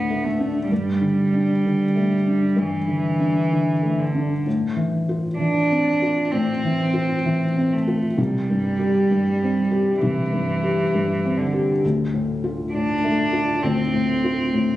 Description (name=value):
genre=neoclassical piano and strings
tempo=65 BPM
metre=4/4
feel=rubato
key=C major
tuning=A4 = 440 Hz
part: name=warm cello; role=second line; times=0.0-14.8 s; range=D3 to D4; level=-22 LUFS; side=right 2 dB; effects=none
part: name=felt-muted upright piano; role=accompaniment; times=0.0-14.8 s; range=C2 to G4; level=-21 LUFS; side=left 2 dB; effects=none
room=wet recital hall reverb, RT60 1.4 s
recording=recorded on a phone in the room, club reverb, compression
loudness=-19 LUFS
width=side -14 dB against mid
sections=0.0-14.8 A section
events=none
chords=0.0 D5; 0.7 Gsus2; 4.5 Fmaj7/A; 8.2 C5; 11.8 Dm7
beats=| 0.71 1.65 2.58 3.52 | 4.46 5.39 6.32 7.25 | 8.18 9.11 10.02 10.93 | 11.83 12.74 13.64 14.54